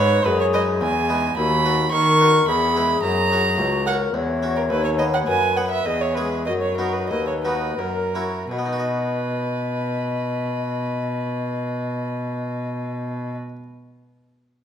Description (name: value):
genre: classical, baroque-style sonata movement with continuo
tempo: 80-109 BPM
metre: 3/4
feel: straight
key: B major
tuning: A4 = 440 Hz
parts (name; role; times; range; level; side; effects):
- mellow baroque flute; melody; 0.0-13.4 s; F#4 to D#5; -26 LUFS; left 8 dB; none
- rich violin; second line; 0.0-13.3 s; A#4 to C#6; -23 LUFS; right 4 dB; none
- harpsichord; accompaniment; 0.0-13.6 s; C#2 to D#5; -26 LUFS; left 1 dB; none
- rich cello; bass; 0.0-13.3 s; C#2 to D#3; -25 LUFS; right 1 dB; none
room: wet recital hall reverb, RT60 1.6 s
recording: none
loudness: -19 LUFS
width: side -9 dB against mid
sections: 0.0-8.5 A section; 8.5-13.0 B section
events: slowing down 3.9-8.5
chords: 0.0 G#m; 1.4 B/D#; 2.5 E; 3.0 F#; 4.1 F#5/E; 4.7 B/D#; 5.9 C#m7/E; 6.5 B/F#; 7.8 F#7; 8.5 B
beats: 0.26 0.81 | 1.37 1.92 2.47 | 3.03 3.59 4.14 | 4.70 5.27 5.86 | 6.47 7.11 7.79 | 8.53 9.27 10.01 | 10.76 11.50 12.25